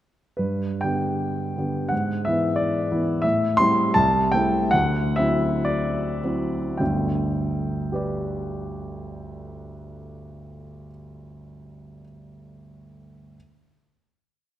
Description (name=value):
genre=classical, romantic character piece for solo piano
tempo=51-94 BPM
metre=2/4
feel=rubato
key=G major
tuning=A4 = 440 Hz
part: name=warm grand piano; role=solo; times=0.4-13.4 s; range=G1 to C6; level=-22 LUFS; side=equal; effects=none
room=wet concert hall reverb, RT60 2.0 s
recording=none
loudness=-21 LUFS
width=side -12 dB against mid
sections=0.4-6.8 A section; 6.8-11.1 final chord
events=slowing down 2.6-6.8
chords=0.4 G; 1.9 E7/G#; 3.2 Am7; 3.9 Am/C; 4.7 D9; 6.8 G